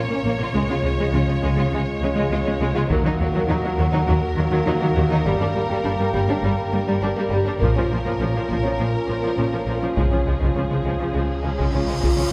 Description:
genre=cinematic, epic orchestral film score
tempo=102 BPM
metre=4/4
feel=straight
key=unclear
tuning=A4 = 438 Hz
part: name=warm symphonic violin section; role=melody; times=0.0-12.1 s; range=Ab4 to Db5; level=-33 LUFS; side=equal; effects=none
part: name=warm symphonic violin section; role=second line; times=0.0-12.2 s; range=G3 to F4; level=-31 LUFS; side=equal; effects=none
part: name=warm French horn section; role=sustained chords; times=0.0-12.3 s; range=Ab3 to G4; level=-30 LUFS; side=equal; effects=none
part: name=rich chamber viola section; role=accompaniment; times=0.1-12.2 s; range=F3 to Bb3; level=-30 LUFS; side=equal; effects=none
part: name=rich symphonic cello section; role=bass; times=0.1-12.2 s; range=G2 to Eb3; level=-28 LUFS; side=equal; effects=none
part: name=rich symphonic double bass section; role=bass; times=0.2-12.1 s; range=G1 to Eb2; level=-28 LUFS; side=equal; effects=none
part: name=taiko ensemble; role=drums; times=2.9-4.0, 7.6-12.3 s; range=none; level=-27 LUFS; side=equal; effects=none
part: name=cymbal swell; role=sound effects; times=11.6-12.3 s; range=none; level=-32 LUFS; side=equal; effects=none
room=wet concert hall reverb, RT60 2.1 s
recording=recorded in a church or concert hall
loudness=-21 LUFS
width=mono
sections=0.0-12.3 A section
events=build-up 0.0-12.3; cymbal swell 11.6-12.3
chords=0.0 Bbm; 0.5 Db; 2.9 Ebm; 5.3 Gm; 7.6 Bbm; 10.0 Db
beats=| 0.54 1.13 1.72 2.31 | 2.90 3.49 4.08 4.67 | 5.25 5.84 6.43 7.02 | 7.61 8.20 8.79 9.38 | 9.96 10.55 11.14 11.73 | 12.31

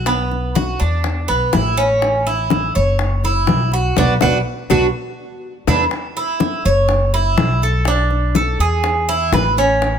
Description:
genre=latin, Cuban son and guajira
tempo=123 BPM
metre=4/4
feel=straight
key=unclear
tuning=A4 = 440 Hz
part: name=Cuban tres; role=arpeggios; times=0.0-10.0 s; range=B3 to C#5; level=-17 LUFS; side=right 2 dB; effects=none
part: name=upright bass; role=bass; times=0.0-10.0 s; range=F#1 to E2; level=-19 LUFS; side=equal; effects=none
part: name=bongos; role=percussion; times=0.1-10.0 s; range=none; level=-24 LUFS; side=left 7 dB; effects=none
part: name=congas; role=percussion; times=0.1-10.0 s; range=none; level=-21 LUFS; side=left 2 dB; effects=none
room=light reverb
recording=none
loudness=-14 LUFS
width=side -8 dB against mid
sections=0.0-5.9 A section; 5.9-10.0 A section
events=band accent 4.0-5.9; drum fill 4.9-5.9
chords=0.1 Bm; 1.0 E5; 2.0 A; 3.0 F#5; 4.0 Bm; 4.9 E5; 5.9 C#madd11; 6.9 F#m7; 7.9 Bm7; 8.8 E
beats=| 0.07 0.56 1.05 1.53 | 2.02 2.51 3.00 3.48 | 3.97 4.46 4.94 5.43 | 5.92 6.41 6.89 7.38 | 7.87 8.35 8.84 9.33 | 9.82

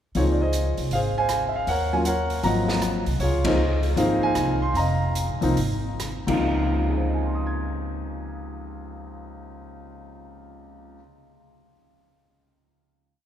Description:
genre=jazz piano trio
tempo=134-158 BPM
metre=4/4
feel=swing 65% on 8ths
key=Db major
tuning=A4 = 440 Hz
part: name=open jazz drum kit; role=drums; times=0.1-6.4 s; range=crash cymbal, hi-hat, kick drum, ride cymbal, rim click, snare drum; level=-34 LUFS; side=right 2 dB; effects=none
part: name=warm concert grand piano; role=melody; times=0.2-11.8 s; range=Db2 to Ab6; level=-24 LUFS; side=left 1 dB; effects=none
part: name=upright bass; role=bass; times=0.2-10.9 s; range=F1 to Eb2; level=-26 LUFS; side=equal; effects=none
room=wet church reverb, RT60 3.8 s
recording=recorded in a church or concert hall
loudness=-21 LUFS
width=side -10 dB against mid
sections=0.2-6.4 A section; 6.4-10.0 final chord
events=slowing down 3.2-6.4; band accent 3.4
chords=0.2 Dbmaj9; 1.7 Ebm7; 2.4 Ab13; 3.2 Dbmaj13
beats=| 0.15 0.53 0.92 1.30 | 1.68 2.06 2.44 2.82 | 3.20 3.58 3.97 4.36 | 4.75 5.16 5.57 6.00 | 6.44 6.89 7.33 7.78 | 8.23 8.68 9.13 9.57

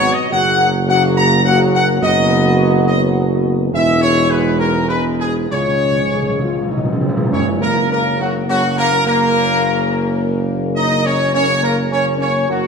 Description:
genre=classical, ceremonial fanfare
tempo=105 BPM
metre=3/4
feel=straight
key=F# major from 7.3 s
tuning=A4 = 440 Hz
part: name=warm trumpet section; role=melody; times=0.0-12.7 s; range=F#4 to A#5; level=-17 LUFS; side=left 1 dB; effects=none
part: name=dark trombone section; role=sustained chords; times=0.0-12.7 s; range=G#2 to D#4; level=-22 LUFS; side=right 3 dB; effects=none
part: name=mellow French horn section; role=sustained chords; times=0.0-12.7 s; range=C#3 to G#4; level=-21 LUFS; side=left 5 dB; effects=none
part: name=mellow tuba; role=bass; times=0.0-12.7 s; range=E1 to C#2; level=-19 LUFS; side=right 3 dB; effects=none
part: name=timpani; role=percussion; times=5.5-8.2 s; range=F#2 to C#3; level=-20 LUFS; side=right 1 dB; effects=none
room=wet scoring stage reverb, RT60 2.1 s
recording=none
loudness=-13 LUFS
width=side -6 dB against mid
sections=0.0-7.3 A section; 7.3-12.7 B section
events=timpani fill 5.5-7.3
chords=0.3 F#; 2.0 B/F#; 3.7 E; 5.5 C#; 7.3 F#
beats=| 0.31 0.88 1.45 | 2.02 2.59 3.16 | 3.73 4.31 4.90 | 5.51 6.12 6.73 | 7.33 7.91 8.49 | 9.05 9.62 10.19 | 10.76 11.33 11.91 | 12.49

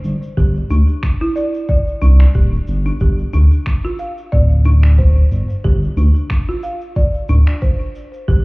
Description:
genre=organic downtempo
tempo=91 BPM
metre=4/4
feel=swing 55% on 16ths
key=unclear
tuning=A4 = 441 Hz
part: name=smooth synth bass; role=bass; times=0.0-8.4 s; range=D1 to D2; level=-12 LUFS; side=equal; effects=none
part: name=electronic shaker and finger snaps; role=drums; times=0.0-8.4 s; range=none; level=-33 LUFS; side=equal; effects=none
part: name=folk marimba with medium mallets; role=arpeggios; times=0.4-8.4 s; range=D4 to F5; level=-24 LUFS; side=equal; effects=ping-pong delay
part: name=electronic kick drum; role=drums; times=0.4-8.4 s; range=none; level=-16 LUFS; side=equal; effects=none
room=digital ambience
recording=heard muffled through a wall, club ambience, EQ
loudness=-12 LUFS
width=side -26 dB against mid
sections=0.0-8.4 A section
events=none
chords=0.0 Csus2; 3.0 G5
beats=| 0.37 1.03 1.69 2.35 | 3.00 3.66 4.32 4.98 | 5.64 6.30 6.96 7.62 | 8.28

